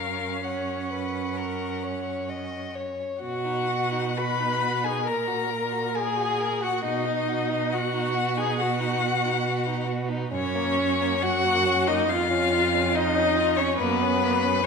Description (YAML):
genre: classical, slow romantic movement for string quartet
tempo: 68 BPM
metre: 4/4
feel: uneven beats, rubato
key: F# major, B major from 3.2 s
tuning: A4 = 441 Hz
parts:
  - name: warm violin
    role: melody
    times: 0.0-14.7 s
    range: B4 to B5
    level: -27 LUFS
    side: left 8 dB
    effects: none
  - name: dark violin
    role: second line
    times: 0.0-14.6 s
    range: A#3 to D#5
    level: -32 LUFS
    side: left 4 dB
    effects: none
  - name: rich viola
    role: accompaniment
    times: 0.0-14.6 s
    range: B3 to B4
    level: -28 LUFS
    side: right 4 dB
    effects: none
  - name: rich cello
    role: bass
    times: 0.0-14.7 s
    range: E#2 to B2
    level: -30 LUFS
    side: right 5 dB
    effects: none
room: wet scoring stage reverb, RT60 1.8 s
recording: minimal, uncompressed stereo recording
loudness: -23 LUFS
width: side -5 dB against mid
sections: 0.0-3.2 A section; 3.2-14.7 B section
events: none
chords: 0.0 F#; 3.2 B; 5.1 F#/A#; 6.9 B; 10.3 F#; 12.1 C#/E#; 13.8 F#